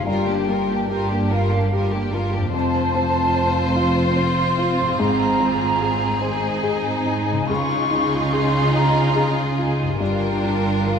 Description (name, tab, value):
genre	cinematic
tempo	48 BPM (dotted quarters)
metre	6/8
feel	rubato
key	unclear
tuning	A4 = 440 Hz
part	rich studio violin section	melody	0.0-11.0 s	G4 to C5	-29 LUFS	left 3 dB	none
part	rich studio violin section	second line	0.0-11.0 s	D4 to F4	-28 LUFS	left 1 dB	none
part	small flute group	second line	0.0-11.0 s	F5 to Db6	-24 LUFS	equal	none
part	warm baby grand piano	accompaniment	0.0-11.0 s	Db2 to Eb5	-26 LUFS	left 2 dB	none
part	warm studio viola section	accompaniment	0.0-11.0 s	G3 to Eb4	-27 LUFS	right 3 dB	none
part	concert harp	arpeggios	0.0-11.0 s	F2 to C5	-31 LUFS	left 8 dB	none
part	dark studio double bass section	bass	0.0-11.0 s	F1 to Db2	-26 LUFS	right 2 dB	none
part	warm studio cello section	bass	0.0-11.0 s	F2 to Db3	-26 LUFS	right 2 dB	none
room	wet scoring stage reverb, RT60 2.1 s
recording	minimal, uncompressed stereo recording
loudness	-18 LUFS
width	side -7 dB against mid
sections	0.0-11.0 A section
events	none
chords	0.1 Gm7; 2.5 F; 5.0 Ab; 7.5 Dbadd9; 10.0 Gm7